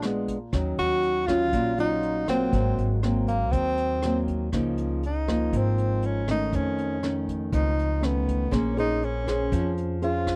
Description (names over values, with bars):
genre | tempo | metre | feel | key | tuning
bossa nova | 120 BPM | 4/4 | straight | Db major | A4 = 439 Hz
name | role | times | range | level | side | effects
breathy tenor saxophone | melody | 0.0-10.4 s | Bb3 to Gb4 | -30 LUFS | equal | none
nylon-string guitar | accompaniment | 0.0-10.4 s | F2 to C5 | -30 LUFS | equal | none
upright bass | bass | 0.0-10.4 s | Ab1 to F2 | -31 LUFS | equal | none
vintage brush drum kit | drums | 0.0-10.4 s | hi-hat, kick drum, rim click | -35 LUFS | equal | none
room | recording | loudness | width
little or no reverb | dry, close 1970s-style studio recording | -25 LUFS | mono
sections
0.0-4.5 A section; 4.5-10.4 B section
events
tenor saxophone solo 4.5-10.4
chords
0.0 Bb7b9; 0.5 Ebm9; 2.5 Ab9; 4.5 Db69; 6.5 Faug7; 8.5 Bbm9